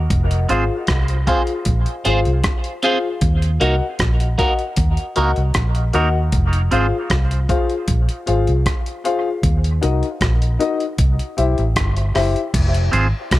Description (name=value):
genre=dub reggae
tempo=77 BPM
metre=4/4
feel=straight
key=F phrygian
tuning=A4 = 441 Hz
part: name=vintage muted fingered electric bass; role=bass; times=0.0-13.4 s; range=F1 to Eb2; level=-18 LUFS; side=equal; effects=none
part: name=dusty soul sampler-style drum kit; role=drums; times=0.1-13.4 s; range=crash cymbal, hi-hat, kick drum, rim click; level=-20 LUFS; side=equal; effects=none
part: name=clean electric guitar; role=accompaniment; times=0.5-6.9, 12.9-13.1 s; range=Bb3 to C5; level=-23 LUFS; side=right 3 dB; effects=phaser, dub echo
part: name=dark grand piano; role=stabs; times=0.5-12.4 s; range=Eb4 to Gb5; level=-22 LUFS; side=left 4 dB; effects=dub echo
room=light reverb, digital ambience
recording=none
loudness=-16 LUFS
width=side -16 dB against mid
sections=0.0-12.5 A section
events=none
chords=0.1 Fm; 3.2 Ebm; 6.3 Fm; 9.4 Ebm; 11.0 C; 12.5 Fm